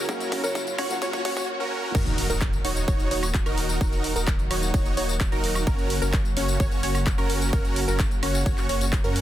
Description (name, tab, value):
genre	EDM, festival progressive house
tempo	129 BPM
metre	4/4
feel	straight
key	unclear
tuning	A4 = 440 Hz
part	warm grand piano	accompaniment	0.0-2.0 s	F#3 to F#4	-37 LUFS	left 2 dB	sidechain pumping, dub echo
part	lush unison pad	sustained chords	0.0-9.2 s	C#3 to F#4	-35 LUFS	equal	chorus, sidechain pumping
part	wide unison pluck	arpeggios	0.0-9.2 s	A#4 to C#5	-33 LUFS	equal	sidechain pumping, dub echo
part	supersaw chords	riff	0.0-9.2 s	C#4 to C#5	-29 LUFS	right 1 dB	sidechain pumping, dub echo
part	saturated sub bass	bass	0.0-9.2 s	D#1 to F#2	-29 LUFS	equal	sidechain pumping
part	riser and impact	sound effects	0.0-3.8 s	none	-34 LUFS	equal	none
part	big-room dance drum kit	drums	0.1-9.2 s	crash cymbal, handclaps, hi-hat, tambourine, woodblock	-31 LUFS	left 1 dB	overdrive
part	electronic kick drum	drums	0.1-9.0 s	none	-25 LUFS	equal	overdrive, high-pass filter on kick
part	vibraphone with medium hard mallets	melody	0.4-0.9 s	C#5 to F#5	-35 LUFS	equal	dub echo
room	light reverb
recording	dense, heavily limited modern master, high-pass filter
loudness	-22 LUFS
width	side -13 dB against mid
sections	0.0-1.9 A section; 1.9-9.2 B section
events	build-up 0.0-1.9; drum fill 0.0-1.5; riser 0.0-1.5; filter sweep on synth pluck 0.0-1.9; drop 1.9-9.2; impact 1.9-3.8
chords	0.0 F#; 1.9 D#m; 5.7 F#